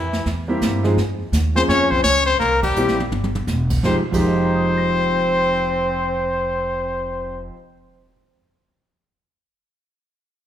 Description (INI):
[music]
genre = jazz, small-group swing and bop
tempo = 168 BPM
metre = 4/4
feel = swing 64% on 8ths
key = F minor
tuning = A4 = 440 Hz
[part]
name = bright trumpet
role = melody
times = 0.0-7.5 s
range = E4 to Db5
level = -20 LUFS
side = left 4 dB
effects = none
[part]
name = bright trombone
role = second line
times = 0.0-7.5 s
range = E3 to Db4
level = -27 LUFS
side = right 4 dB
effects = none
[part]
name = upright bass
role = bass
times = 0.0-7.5 s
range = E1 to G2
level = -24 LUFS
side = right 1 dB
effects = none
[part]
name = jazz brush drum kit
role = drums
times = 0.1-4.2 s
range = brushed snare drum, crash cymbal, hi-hat, kick drum, snare drum, toms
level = -25 LUFS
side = right 1 dB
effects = none
[part]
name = warm grand piano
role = accompaniment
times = 0.5-8.1 s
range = F2 to Bb6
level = -22 LUFS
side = right 1 dB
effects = none
[sound]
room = moderate recital hall reverb, RT60 1.6 s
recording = recorded in a church or concert hall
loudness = -17 LUFS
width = side -10 dB against mid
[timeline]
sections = 0.0-3.8 A section; 3.8-6.7 B section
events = band accent 2.6; drum fill 2.8-3.5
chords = 0.0 C7; 1.0 Fm7; 1.7 Bbm9; 2.4 C7; 3.8 Fm9